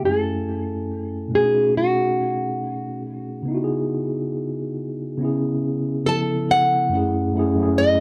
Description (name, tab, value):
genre	hip hop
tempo	70 BPM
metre	4/4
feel	swing 55% on 16ths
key	F# dorian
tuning	A4 = 438 Hz
part	nylon-string guitar	melody	0.0-8.0 s	F#4 to A5	-23 LUFS	equal	low-pass filter
part	mellow tine electric piano	accompaniment	0.0-8.0 s	F#2 to G#5	-25 LUFS	equal	cassette tape, low-pass filter
room	moderate studio reverb, RT60 0.5 s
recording	dry, gritty hardware recording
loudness	-22 LUFS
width	mono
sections	0.0-6.9 A section; 6.9-8.0 B section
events	filter sweep 0.0-6.9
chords	0.1 F#m7; 1.3 B13; 3.5 C#m11; 5.2 C#m7; 6.1 C#7alt; 6.9 F#m7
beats	| 0.05 0.91 1.77 2.63 | 3.48 4.34 5.20 6.05 | 6.91 7.77